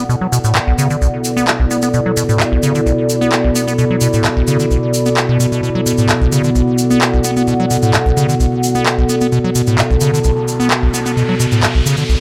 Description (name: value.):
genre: acid house.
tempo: 130 BPM.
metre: 4/4.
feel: straight.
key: unclear.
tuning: A4 = 440 Hz.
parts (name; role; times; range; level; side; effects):
dark analog pad; sustained chords; 0.0-12.2 s; B2 to D5; -20 LUFS; equal; chorus.
acid bass, square; riff; 0.0-12.2 s; B1 to B3; -18 LUFS; equal; delay.
warbly tape-like pad; texture; 0.0-12.2 s; B3 to B5; -23 LUFS; equal; chorus, built-in reverb, phaser.
tube shaker; percussion; 0.1-12.2 s; none; -26 LUFS; equal; none.
electronic handclaps; drums; 0.6-11.7 s; none; -19 LUFS; equal; none.
riser; sound effects; 9.9-12.2 s; none; -28 LUFS; equal; none.
room: moderate plate reverb, RT60 1.4 s.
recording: none.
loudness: -14 LUFS.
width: mono.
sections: 0.0-12.2 A section.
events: riser 9.9-12.2.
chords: 0.0 Bm.